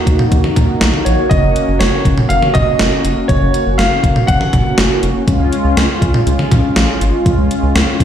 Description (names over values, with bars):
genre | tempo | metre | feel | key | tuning
synth-pop | 121 BPM | 4/4 | straight | F# major | A4 = 440 Hz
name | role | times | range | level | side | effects
mellow synth brass | accompaniment | 0.0-8.0 s | G#3 to F#4 | -17 LUFS | equal | chorus
rubbery square bass | bass | 0.1-8.0 s | E#1 to D#2 | -16 LUFS | equal | none
gated 80s digital drum machine | drums | 0.1-8.0 s | hi-hat, kick drum, snare drum, toms | -14 LUFS | equal | gated reverb, gated reverb snare
clear baby grand piano | melody | 1.0-4.7 s | C#5 to F#5 | -17 LUFS | equal | tape echo
room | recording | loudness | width
moderate digital room reverb, RT60 1.1 s, digital ambience | played on a big sound system in a bare room, stone room reverb | -11 LUFS | side -9 dB against mid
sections
0.0-8.0 A section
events
none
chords
0.0 D#m; 1.3 F#; 5.3 C#